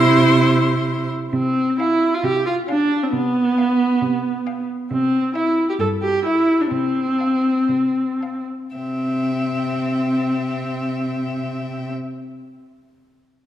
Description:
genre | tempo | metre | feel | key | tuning
quick classical-period movement for string quartet | 108-137 BPM | 4/4 | rubato | C major | A4 = 440 Hz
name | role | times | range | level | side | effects
rich violin | melody | 0.0-11.9 s | G5 to C6 | -30 LUFS | left 11 dB | none
rich violin | second line | 0.0-11.9 s | C5 to F5 | -29 LUFS | left 5 dB | none
rich viola | accompaniment | 0.0-11.9 s | B3 to A4 | -19 LUFS | equal | none
clear cello | bass | 0.0-11.9 s | G2 to C3 | -24 LUFS | right 3 dB | none
room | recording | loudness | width
wet concert hall reverb, RT60 2.1 s | none | -18 LUFS | side -11 dB against mid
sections
0.0-1.3 A section; 1.3-8.8 B section; 8.8-13.0 C section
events
slowing down 4.0-8.8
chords
0.0 C; 1.3 Fm/C; 3.1 G7/C; 4.9 C; 6.7 F/C

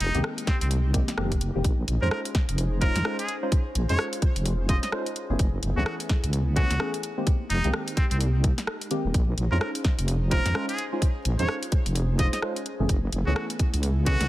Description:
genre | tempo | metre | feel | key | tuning
UK garage, two-step garage | 128 BPM | 4/4 | swing 60% on 16ths | Bb dorian | A4 = 440 Hz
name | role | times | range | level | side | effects
trumpet with straight mute | melody | 0.0-14.3 s | C4 to Eb5 | -32 LUFS | equal | digital delay
airy breathy pad | sustained chords | 0.0-14.3 s | Ab3 to C5 | -38 LUFS | equal | chorus, sidechain pumping
deep soft wobble bass | bass | 0.0-14.3 s | Eb1 to F2 | -25 LUFS | equal | chorus
garage drum kit | drums | 0.0-14.3 s | hi-hat, rim click, snare drum | -31 LUFS | equal | soft clipping on snare
deep mellow chord stab | stabs | 0.1-14.2 s | Eb3 to C5 | -32 LUFS | equal | chorus, digital delay
electronic kick drum | drums | 0.5-14.2 s | none | -24 LUFS | equal | none
room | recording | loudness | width
little or no reverb | dense, heavily limited modern master, vinyl crackle | -23 LUFS | side -16 dB against mid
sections
0.0-14.3 A section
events
none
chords
0.0 Fm11; 1.6 Bbm11 (rootless); 5.2 Gbm11; 7.0 Fm11 (rootless); 9.1 Bbm11 (rootless); 12.7 Gbm11

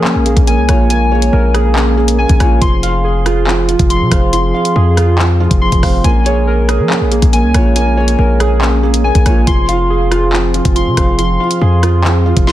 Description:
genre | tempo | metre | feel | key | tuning
hip hop, drill | 140 BPM | 4/4 | half-time | Bb minor | A4 = 440 Hz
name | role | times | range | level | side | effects
felt-muted upright piano | accompaniment | 0.0-12.5 s | F3 to Bb4 | -18 LUFS | right 3 dB | none
dark French horn section | sustained chords | 0.0-12.5 s | Db3 to Ab4 | -24 LUFS | left 1 dB | none
warbly lo-fi synth keys | arpeggios | 0.0-12.5 s | F3 to C6 | -16 LUFS | right 1 dB | chorus, tape echo
hard-hitting 808-style bass | bass | 0.0-12.5 s | F1 to F3 | -14 LUFS | equal | none
drill drum kit | drums | 0.0-12.5 s | handclaps, hi-hat, kick drum, rim click, snare drum | -14 LUFS | equal | none
room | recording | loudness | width
digital ambience | dense, heavily limited modern master | -9 LUFS | side -13 dB against mid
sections
0.0-12.5 A section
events
none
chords
0.0 Bbm7; 2.6 Fm; 6.0 Bbm7; 9.5 Fm

